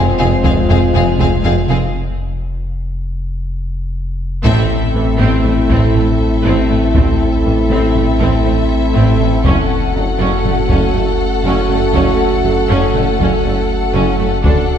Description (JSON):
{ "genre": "cinematic, hybrid orchestral and electronic film score", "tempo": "120 BPM", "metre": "5/4", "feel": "straight", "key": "A dorian", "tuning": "A4 = 440 Hz", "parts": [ { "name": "warm symphonic violin section", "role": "melody", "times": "0.0-14.8 s", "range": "E5 to F#5", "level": "-24 LUFS", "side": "left 5 dB", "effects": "none" }, { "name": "warm symphonic violin section", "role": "second line", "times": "0.0-14.8 s", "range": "Ab4 to A4", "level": "-23 LUFS", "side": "left 4 dB", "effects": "none" }, { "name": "dark analog pad", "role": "sustained chords", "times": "0.0-14.8 s", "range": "Ab3 to C5", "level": "-20 LUFS", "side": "equal", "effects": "chorus" }, { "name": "warm French horn section", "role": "sustained chords", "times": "0.0-14.8 s", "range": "Ab3 to F#4", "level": "-21 LUFS", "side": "right 1 dB", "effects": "none" }, { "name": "clear tuba", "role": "bass", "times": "0.0-14.5 s", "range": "F1 to D2", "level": "-23 LUFS", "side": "right 2 dB", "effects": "none" }, { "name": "punchy sub bass", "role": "bass", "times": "0.0-14.8 s", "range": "D1 to A1", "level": "-20 LUFS", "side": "left 1 dB", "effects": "none" }, { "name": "rich symphonic cello section", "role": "bass", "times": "0.0-14.5 s", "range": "D2 to A2", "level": "-21 LUFS", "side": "right 2 dB", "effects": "none" }, { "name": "clear symphonic viola section", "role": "accompaniment", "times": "0.2-14.7 s", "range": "E3 to D4", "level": "-22 LUFS", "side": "right 1 dB", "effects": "none" }, { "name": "warm symphonic double bass section", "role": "bass", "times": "0.2-14.5 s", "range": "F1 to D2", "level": "-20 LUFS", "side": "right 3 dB", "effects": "none" }, { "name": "taiko ensemble", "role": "drums", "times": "0.2-14.8 s", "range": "none", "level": "-19 LUFS", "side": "left 1 dB", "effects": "none" } ], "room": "wet scoring stage reverb, RT60 2.0 s", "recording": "heard from further back in the room", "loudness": "-12 LUFS", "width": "side -8 dB against mid", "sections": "0.0-4.4 A section; 4.4-14.8 B section", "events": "break 1.9-4.4; drum fill 3.7-4.4; band accent 4.4-4.9", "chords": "0.0 Fm; 4.4 Am; 9.4 F#m" }